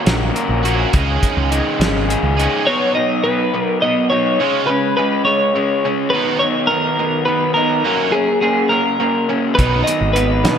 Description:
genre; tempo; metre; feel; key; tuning
indie rock; 69 BPM (dotted quarters); 6/8; straight; unclear; A4 = 439 Hz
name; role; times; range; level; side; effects
cranked stack guitar; riff; 0.0-10.6 s; D#3 to G#4; -21 LUFS; right 7 dB; overdrive, ensemble chorus, analog delay
raw garage guitar; riff; 0.0-10.6 s; F#2 to A#4; -20 LUFS; left 6 dB; overdrive, slapback echo
growling picked electric bass; bass; 0.1-2.5, 9.6-10.6 s; G#1 to B2; -19 LUFS; equal; overdrive
cloth-damped thuddy drum kit; drums; 0.1-2.5, 9.6-10.6 s; hi-hat, kick drum, snare drum; -19 LUFS; equal; none
twelve-string electric guitar; melody; 2.7-10.6 s; G#4 to D#5; -17 LUFS; equal; slapback echo, analog delay
room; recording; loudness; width
moderate lush hall reverb, RT60 2.2 s; big arena sound; -14 LUFS; side -8 dB against mid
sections
0.0-2.7 A section; 2.7-10.6 B section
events
none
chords
0.0 F#/A#; 0.9 C#sus2; 2.7 B; 4.4 C#; 6.1 B; 7.9 F#; 9.6 B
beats
0.07 | 0.94 1.80 | 2.67 3.54 | 4.40 5.27 | 6.13 7.00 | 7.86 8.72 | 9.58 10.45

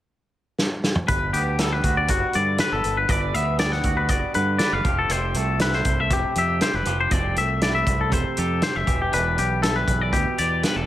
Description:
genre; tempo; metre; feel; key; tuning
math rock and midwest emo; 120 BPM; 4/4; straight; G major; A4 = 440 Hz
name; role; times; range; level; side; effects
loose indie drum kit; drums; 0.6-10.7 s; hi-hat, kick drum, snare drum, toms; -24 LUFS; equal; none
twangy electric guitar; accompaniment; 1.1-10.9 s; G2 to B4; -29 LUFS; right 8 dB; wide subtle chorus, plate reverb
twangy electric guitar; arpeggios; 1.1-10.9 s; F#4 to F#5; -23 LUFS; left 4 dB; spring reverb, slapback echo, plate reverb
growling fingered electric bass; bass; 1.1-10.9 s; E1 to G2; -26 LUFS; equal; overdrive
room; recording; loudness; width
light reverb; none; -19 LUFS; side -13 dB against mid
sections
0.0-1.1 A section; 1.1-10.9 B section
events
drum fill 0.6-1.1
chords
0.0 N.C.; 1.1 Gmaj7; 4.9 Fmaj9; 8.9 Em7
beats
0.08 0.58 | 1.09 1.59 2.09 2.59 | 3.09 3.60 4.10 4.60 | 5.10 5.60 6.11 6.61 | 7.11 7.61 8.11 8.62 | 9.12 9.62 10.12 10.62

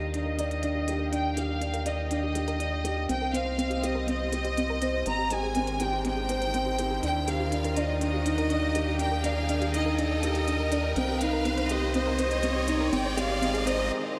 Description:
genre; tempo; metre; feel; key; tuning
piano and strings electronica; 122 BPM; 4/4; straight; Eb major; A4 = 438 Hz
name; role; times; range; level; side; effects
clear studio violin section; melody; 0.0-13.9 s; Eb5 to Bb5; -34 LUFS; equal; low-pass filter, digital delay
dark chamber string section; sustained chords; 0.0-14.2 s; Eb3 to G5; -39 LUFS; equal; low-pass filter
soft round pluck; arpeggios; 0.0-13.8 s; C4 to D5; -39 LUFS; equal; none
felt-muted upright piano; riff; 0.0-14.2 s; C4 to D5; -33 LUFS; equal; digital delay
round analog bass; bass; 0.0-13.9 s; Ab1 to Eb2; -34 LUFS; equal; none
riser; sound effects; 2.6-13.9 s; none; -40 LUFS; equal; none
electronic hi-hat; drums; 0.1-13.8 s; none; -44 LUFS; equal; none
room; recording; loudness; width
moderate huge ambient reverb, RT60 4.6 s; none; -28 LUFS; mono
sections
0.0-14.2 A section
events
build-up 0.0-14.2; riser 2.6-13.9; break 13.9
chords
0.0 Ebmaj7; 3.1 Cm7; 5.1 Abmaj7; 7.0 Ebmaj7; 11.0 Cm7; 12.9 Abmaj7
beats
0.15 0.64 | 1.13 1.62 2.11 2.60 | 3.10 3.59 4.08 4.57 | 5.06 5.56 6.05 6.54 | 7.03 7.52 8.02 8.51 | 9.00 9.49 9.98 10.47 | 10.97 11.46 11.95 12.44 | 12.93 13.43 13.92

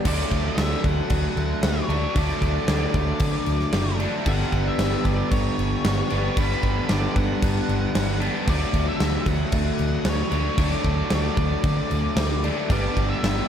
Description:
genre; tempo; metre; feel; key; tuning
rock, shoegaze and dream pop; 114 BPM; 4/4; straight; D major; A4 = 442 Hz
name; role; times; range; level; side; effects
overdriven electric guitar; riff; 0.0-13.5 s; G2 to D4; -25 LUFS; left 1 dB; wide subtle chorus
octave-fuzz lead guitar; melody; 0.1-13.5 s; B4 to F#5; -32 LUFS; right 1 dB; distortion, ping-pong delay
vintage muted fingered electric bass; bass; 0.1-13.4 s; F#1 to D3; -25 LUFS; equal; none
huge arena drum kit; drums; 0.1-13.4 s; crash cymbal, kick drum, snare drum; -26 LUFS; equal; none
room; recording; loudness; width
light reverb, small room ambience; none; -20 LUFS; side -9 dB against mid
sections
0.1-13.5 A section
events
none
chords
0.1 D; 4.3 Gmaj7; 8.5 D; 12.7 G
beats
| 0.06 0.58 1.11 1.64 | 2.16 2.69 3.21 3.74 | 4.26 4.79 5.32 5.84 | 6.37 6.89 7.42 7.95 | 8.47 9.00 9.53 10.06 | 10.59 11.12 11.64 12.17 | 12.70 13.23

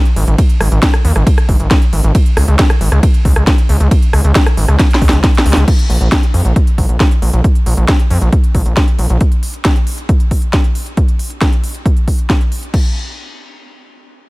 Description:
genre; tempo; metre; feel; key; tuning
uplifting trance; 136 BPM; 4/4; straight; Bb minor; A4 = 441 Hz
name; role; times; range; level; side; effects
techno drum kit; drums; 0.1-12.8 s; crash cymbal, hi-hat, ride cymbal, rim click, snare drum; -18 LUFS; equal; none
gritty driven synth bass; bass; 0.2-9.2 s; Ab1 to F2; -11 LUFS; equal; tube saturation, sidechain pumping
electronic kick drum; drums; 0.4-12.8 s; none; -12 LUFS; equal; overdrive
room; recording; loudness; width
digital ambience; none; -10 LUFS; side -22 dB against mid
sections
0.0-5.7 A section; 5.7-12.7 B section; 12.7-14.3 C section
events
drop 0.0-5.7; drum fill 4.8-5.7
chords
none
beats
| 0.38 0.83 1.27 1.71 | 2.15 2.59 3.03 3.47 | 3.91 4.36 4.80 5.24 | 5.68 6.12 6.56 7.00 | 7.44 7.88 8.33 8.77 | 9.21 9.65 10.09 10.53 | 10.97 11.41 11.86 12.30 | 12.74

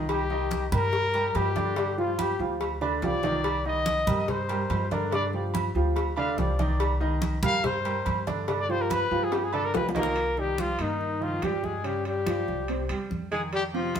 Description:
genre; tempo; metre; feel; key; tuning
Afro-Cuban jazz; 143 BPM; 4/4; straight; C minor; A4 = 439 Hz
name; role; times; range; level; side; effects
clear baby grand piano; accompaniment; 0.0-14.0 s; C3 to Eb5; -31 LUFS; right 2 dB; none
upright bass; bass; 0.0-14.0 s; C2 to G2; -31 LUFS; equal; none
breathy trumpet; melody; 0.1-14.0 s; Eb4 to F5; -29 LUFS; left 3 dB; none
agogo bells and timbales; percussion; 0.1-14.0 s; none; -34 LUFS; right 7 dB; none
congas; percussion; 0.1-14.0 s; none; -34 LUFS; right 1 dB; none
cowbell and bongos; percussion; 0.1-10.2 s; none; -35 LUFS; left 6 dB; none
warm tenor saxophone; second line; 10.0-14.0 s; Eb3 to Bb3; -34 LUFS; right 2 dB; none
room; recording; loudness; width
moderate stone room reverb, RT60 1.0 s; band playing live in one room; -24 LUFS; side -8 dB against mid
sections
0.0-10.2 A section; 10.2-14.0 B section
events
trumpet solo 0.0-10.2; drum fill 3.0-3.4, 9.3-10.2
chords
0.1 Cm7; 1.8 G5; 3.4 Cm7; 5.1 G5; 6.8 Cm7; 8.5 G5; 10.2 Cm7; 11.8 Dbmaj7#11; 12.7 C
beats
| 0.09 0.51 0.93 1.35 | 1.76 2.18 2.60 3.02 | 3.44 3.86 4.28 4.70 | 5.12 5.54 5.96 6.38 | 6.80 7.22 7.64 8.06 | 8.48 8.90 9.32 9.74 | 10.16 10.58 11.00 11.42 | 11.84 12.27 12.69 13.11 | 13.53 13.95

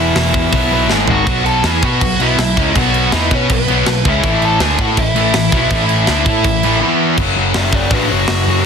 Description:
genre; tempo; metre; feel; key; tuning
punk rock; 162 BPM; 4/4; straight; unclear; A4 = 440 Hz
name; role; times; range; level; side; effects
high-gain lead guitar; melody; 0.0-8.7 s; B3 to A5; -18 LUFS; left 1 dB; distortion
crunchy overdriven guitar; riff; 0.0-8.7 s; E2 to B4; -20 LUFS; left 13 dB; none
distorted electric guitar; riff; 0.0-8.7 s; E2 to B4; -19 LUFS; equal; overdrive
sludgy distorted guitar; riff; 0.0-7.2 s; E2 to B4; -20 LUFS; right 12 dB; overdrive
hollow-body short-scale picked electric bass; bass; 0.0-8.6 s; E1 to B2; -19 LUFS; equal; none
tight metal drum kit; drums; 0.2-8.4 s; crash cymbal, hi-hat, kick drum, snare drum, toms; -17 LUFS; right 1 dB; soft clipping on kick
room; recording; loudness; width
little or no reverb; dense, heavily limited modern master; -11 LUFS; side -6 dB against mid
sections
0.0-1.3 A section; 1.3-7.2 B section; 7.2-8.7 C section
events
drum fill 0.9-1.3; lead electric guitar solo 7.2-8.7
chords
0.0 E5; 0.5 B5; 0.9 G#5; 1.3 B5; 4.2 A5; 6.8 E5; 7.2 F#m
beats
0.16 0.53 0.90 | 1.27 1.64 2.01 2.38 | 2.75 3.12 3.49 3.86 | 4.23 4.60 4.97 5.34 | 5.71 6.08 6.45 6.82 | 7.18 7.55 7.92 8.29 | 8.66

